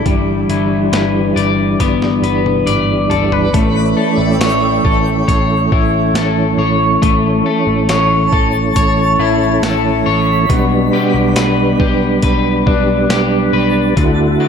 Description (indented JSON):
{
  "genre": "dream pop",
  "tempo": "69 BPM",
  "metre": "4/4",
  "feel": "straight",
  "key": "A mixolydian",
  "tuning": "A4 = 440 Hz",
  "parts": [
    { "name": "mellow tonewheel organ", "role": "sustained chords", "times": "0.0-14.5 s", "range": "D3 to F#4", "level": "-16 LUFS", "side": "right 3 dB", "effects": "chorus vibrato, fast rotary speaker" },
    { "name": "electric guitar at the edge of break-up", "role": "arpeggios", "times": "0.0-14.5 s", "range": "B2 to D5", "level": "-16 LUFS", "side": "left 4 dB", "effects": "analog chorus, ping-pong delay" },
    { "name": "vintage muted picked electric bass", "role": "bass", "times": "0.1-14.4 s", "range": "G1 to D2", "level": "-20 LUFS", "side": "equal", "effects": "none" },
    { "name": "boom bap sampler-style drum kit", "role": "drums", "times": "0.1-14.2 s", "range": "hi-hat, kick drum, snare drum, tambourine, toms", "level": "-18 LUFS", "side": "equal", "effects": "none" }
  ],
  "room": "moderate plate reverb, RT60 2.3 s",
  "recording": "dreamy mix soaked in reverb",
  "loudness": "-11 LUFS",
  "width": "side -7 dB against mid",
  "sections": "0.0-3.5 A section; 3.5-14.5 B section",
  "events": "drum fill 1.8-3.5",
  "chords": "0.1 Em7/G; 3.5 A; 10.5 G/B; 14.0 Dadd9",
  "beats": "| 0.06 0.93 1.80 2.67 | 3.54 4.41 5.28 6.15 | 7.02 7.89 8.76 9.63 | 10.49 11.37 12.23 13.10 | 13.97"
}